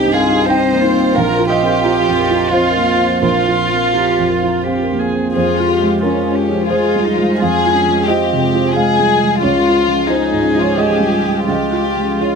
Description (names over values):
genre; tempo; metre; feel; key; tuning
neoclassical piano and strings; 87 BPM; 3/4; uneven beats, rubato; unclear; A4 = 442 Hz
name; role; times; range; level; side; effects
warm chamber violin section; melody; 0.0-12.4 s; Db4 to C5; -16 LUFS; left 2 dB; none
warm cello; second line; 0.0-12.4 s; C4 to Ab4; -22 LUFS; right 3 dB; none
felt-muted upright piano; accompaniment; 0.0-12.4 s; Bb1 to G5; -16 LUFS; right 3 dB; none
lush unison pad; sustained chords; 0.0-12.4 s; Eb3 to G5; -24 LUFS; left 1 dB; chorus
marimba with soft mallets; arpeggios; 0.0-12.3 s; C4 to C6; -23 LUFS; left 2 dB; slapback echo
room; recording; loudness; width
moderate studio reverb, RT60 0.6 s; none; -12 LUFS; side -5 dB against mid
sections
0.0-12.4 A section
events
none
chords
0.0 Cm; 1.2 Bbsus2; 5.3 Fm; 9.4 Db